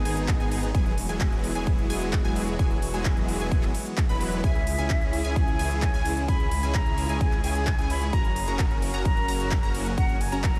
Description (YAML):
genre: EDM, festival progressive house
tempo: 130 BPM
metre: 4/4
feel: straight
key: unclear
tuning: A4 = 441 Hz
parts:
  - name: rich chamber string section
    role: sustained chords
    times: 0.0-10.6 s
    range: B2 to G#4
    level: -39 LUFS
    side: equal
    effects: none
  - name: unison pluck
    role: arpeggios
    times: 0.0-10.6 s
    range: G#5 to B5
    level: -40 LUFS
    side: equal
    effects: phaser, sidechain pumping, analog delay
  - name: supersaw chords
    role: riff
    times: 0.0-10.6 s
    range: F#3 to B4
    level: -34 LUFS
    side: equal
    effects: lush chorus, sidechain pumping, analog delay
  - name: detuned saw bass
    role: bass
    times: 0.0-10.6 s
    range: E1 to C#2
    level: -32 LUFS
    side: equal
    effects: chorus, sidechain pumping
  - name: big-room dance drum kit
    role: drums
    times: 0.1-10.6 s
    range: handclaps, hi-hat, ride cymbal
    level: -38 LUFS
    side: equal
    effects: none
  - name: electronic kick drum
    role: drums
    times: 0.3-10.5 s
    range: none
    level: -27 LUFS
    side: equal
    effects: none
  - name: mellow concert flute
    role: melody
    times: 4.4-10.6 s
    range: E5 to B5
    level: -34 LUFS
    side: equal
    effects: analog delay
room: light reverb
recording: none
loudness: -25 LUFS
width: mono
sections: 0.0-10.6 A section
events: none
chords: 0.0 G#m; 0.7 Eadd9; 4.4 C#m; 8.1 F#